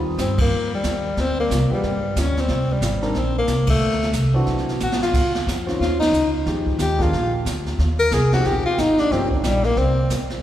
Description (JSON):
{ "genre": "jazz, small-group swing and bop", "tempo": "181 BPM", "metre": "4/4", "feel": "swing 61% on 8ths", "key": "Eb major", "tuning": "A4 = 440 Hz", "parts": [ { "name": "warm grand piano", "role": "accompaniment", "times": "0.0-9.3 s", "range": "Eb3 to Bb4", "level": "-29 LUFS", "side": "equal", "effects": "none" }, { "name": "upright bass", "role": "bass", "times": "0.0-10.4 s", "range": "G1 to G2", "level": "-22 LUFS", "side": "equal", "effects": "none" }, { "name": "warm tenor saxophone", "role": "melody", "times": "0.2-10.1 s", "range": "Eb3 to Bb4", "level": "-21 LUFS", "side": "left 2 dB", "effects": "none" }, { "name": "jazz brush drum kit", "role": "drums", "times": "0.2-10.4 s", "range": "brushed snare drum, crash cymbal, hi-hat, kick drum, ride cymbal, snare drum, toms", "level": "-25 LUFS", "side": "right 1 dB", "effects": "none" } ], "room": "wet church reverb, RT60 3.0 s", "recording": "recorded in a church or concert hall", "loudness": "-18 LUFS", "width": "side -12 dB against mid", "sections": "0.0-10.4 A section", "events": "band accent 0.3, 3.6, 6.0; drum fill 4.8-5.1", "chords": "0.0 Eb69; 1.2 Dm7b5; 1.8 G5; 2.5 C7(no3); 3.8 D9; 5.1 Dbmaj9; 6.5 Fm9; 7.1 Bb; 7.8 Eb69; 9.1 Gm7b5; 9.8 C" }